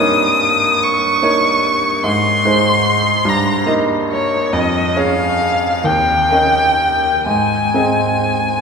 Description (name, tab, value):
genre	classical, romantic duo for violin and grand piano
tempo	41-50 BPM (dotted quarters)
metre	6/8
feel	rubato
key	unclear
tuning	A4 = 442 Hz
part	rich violin	melody	0.0-8.6 s	Db5 to Eb6	-15 LUFS	left 2 dB	none
part	bright grand piano	accompaniment	0.0-8.6 s	Eb2 to Eb5	-16 LUFS	right 1 dB	none
room	wet cathedral reverb, RT60 5.5 s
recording	recorded in a church or concert hall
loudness	-12 LUFS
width	side -5 dB against mid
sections	0.0-8.6 A section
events	none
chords	0.0 Eb7/G; 2.0 Ab; 3.3 Eb/G; 4.5 Db/F; 5.9 Eb7; 7.3 Ab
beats	0.82 | 2.04 3.27 | 4.53 5.86 | 7.27